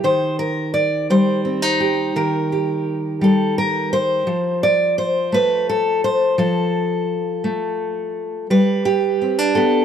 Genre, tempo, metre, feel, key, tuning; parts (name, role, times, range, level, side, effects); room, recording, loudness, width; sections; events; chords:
folk, solo fingerstyle acoustic guitar; 57 BPM (dotted quarters); 6/8; straight; A4 = 440 Hz
fingerpicked steel-string acoustic guitar; solo; 0.0-9.8 s; Eb3 to D5; -16 LUFS; equal
light reverb; -16 LUFS; side -8 dB against mid
0.0-8.5 A section; 8.5-9.8 B section
0.0 Eb; 4.3 F; 8.5 G